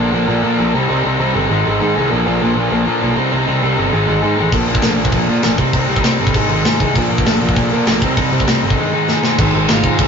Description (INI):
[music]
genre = punk rock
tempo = 198 BPM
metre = 4/4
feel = straight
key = unclear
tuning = A4 = 441 Hz
[part]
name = overdriven electric guitar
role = riff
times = 0.0-10.1 s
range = Ab2 to C4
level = -19 LUFS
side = right 4 dB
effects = none
[part]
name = raw garage guitar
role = riff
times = 0.0-10.1 s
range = Ab2 to Eb4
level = -18 LUFS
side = left 4 dB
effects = overdrive
[part]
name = fuzz picked electric bass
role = bass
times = 0.0-10.1 s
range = G1 to Bb2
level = -19 LUFS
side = equal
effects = overdrive
[part]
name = tight metal drum kit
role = drums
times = 4.5-10.1 s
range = crash cymbal, hi-hat, kick drum, snare drum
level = -16 LUFS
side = equal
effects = none
[part]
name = lead guitar through a small cranked amp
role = melody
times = 9.7-10.1 s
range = Eb4 to F5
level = -21 LUFS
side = right 4 dB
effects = overdrive
[sound]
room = wet booth ambience, RT60 0.2 s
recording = rough rehearsal-room recording, warm saturation, nothing above 7.5 kHz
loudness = -13 LUFS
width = side -6 dB against mid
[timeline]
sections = 0.0-9.4 A section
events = drum fill 9.1-9.4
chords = 0.0 Bb; 0.7 Cm; 1.5 Ab; 2.1 Bb; 3.2 Cm; 3.9 Ab; 4.5 Bb; 5.6 Cm; 6.3 Ab; 7.0 Bb; 8.0 Cm; 8.8 Ab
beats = 0.28 0.58 | 0.89 1.19 1.49 1.80 | 2.10 2.40 2.71 3.01 | 3.31 3.62 3.92 4.22 | 4.53 4.83 5.14 5.44 | 5.74 6.05 6.35 6.65 | 6.96 7.26 7.56 7.87 | 8.17 8.47 8.78 9.08 | 9.38 9.68 9.98